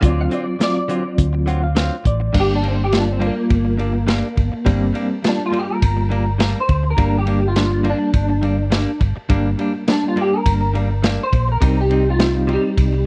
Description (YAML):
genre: straight-eighth soul blues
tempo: 104 BPM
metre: 4/4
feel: swing 54% on 16ths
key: G minor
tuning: A4 = 440 Hz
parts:
  - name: electric guitar through a small old amp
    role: melody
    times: 0.0-13.1 s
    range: G3 to E#5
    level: -24 LUFS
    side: equal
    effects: ensemble chorus
  - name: overdriven reed electric piano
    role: accompaniment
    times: 0.0-13.1 s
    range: F#3 to F#5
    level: -24 LUFS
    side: equal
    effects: tremolo
  - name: direct-recorded clean electric guitar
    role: stabs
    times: 0.0-13.0 s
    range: G2 to E#4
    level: -30 LUFS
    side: equal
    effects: spring reverb
  - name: hollow-body short-scale fingered electric bass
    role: bass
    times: 0.0-13.1 s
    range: G1 to D2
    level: -22 LUFS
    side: equal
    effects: none
  - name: crunchy breakbeat drum kit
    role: drums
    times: 0.0-12.9 s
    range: crash cymbal, hi-hat, kick drum, ride cymbal, snare drum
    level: -22 LUFS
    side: equal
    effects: none
room: little or no reverb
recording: dry, close 1970s-style studio recording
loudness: -18 LUFS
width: mono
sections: 0.0-2.3 A section; 2.3-13.1 B section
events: reed electric piano fill 1.2-2.3; clean electric guitar solo 2.3-13.1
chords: 0.0 D7#9; 2.3 Gm; 11.6 Cm